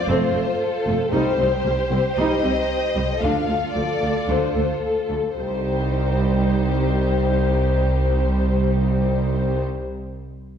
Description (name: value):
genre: cinematic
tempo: 113 BPM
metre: 4/4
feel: straight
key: C dorian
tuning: A4 = 441 Hz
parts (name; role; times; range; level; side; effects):
- dark studio violin section; melody; 0.0-9.6 s; A4 to F5; -25 LUFS; left 4 dB; none
- rich studio violin section; second line; 0.0-9.6 s; F4 to C5; -27 LUFS; left 1 dB; none
- warm chamber viola section; accompaniment; 0.1-9.6 s; D3 to Eb4; -27 LUFS; right 2 dB; none
- rich symphonic cello section; bass; 0.1-9.6 s; C2 to F2; -25 LUFS; right 2 dB; none
- warm symphonic double bass section; bass; 0.1-9.6 s; F1 to D2; -25 LUFS; right 1 dB; none
room: wet scoring stage reverb, RT60 1.7 s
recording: heard from further back in the room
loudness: -18 LUFS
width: side -8 dB against mid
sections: 0.0-5.4 A section; 5.4-9.6 B section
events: none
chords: 0.0 F; 1.1 Cm; 3.2 Dm; 5.4 Cm